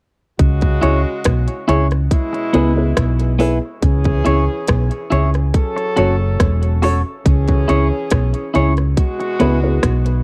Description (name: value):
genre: dub reggae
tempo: 70 BPM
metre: 4/4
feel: straight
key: C# minor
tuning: A4 = 439 Hz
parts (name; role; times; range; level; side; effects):
- clear horn section; second line; 0.4-10.2 s; B2 to A4; -26 LUFS; equal; dub echo
- hollow-body short-scale fingered electric bass; bass; 0.4-10.2 s; E1 to C#2; -18 LUFS; equal; none
- minimal click drum kit; drums; 0.4-10.2 s; hi-hat, kick drum, rim click; -19 LUFS; equal; none
- clean electric guitar; accompaniment; 0.8-9.6 s; B3 to C#5; -24 LUFS; equal; dub echo
- dark upright piano; stabs; 0.8-9.8 s; B3 to C#5; -24 LUFS; equal; dub echo
room: digital ambience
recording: dry, close 1970s-style studio recording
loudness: -16 LUFS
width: mono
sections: 0.4-10.2 A section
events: none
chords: 0.4 C#m; 5.5 F#m; 7.3 C#m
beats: | 0.40 1.25 2.11 2.97 | 3.83 4.68 5.54 6.40 | 7.25 8.11 8.97 9.83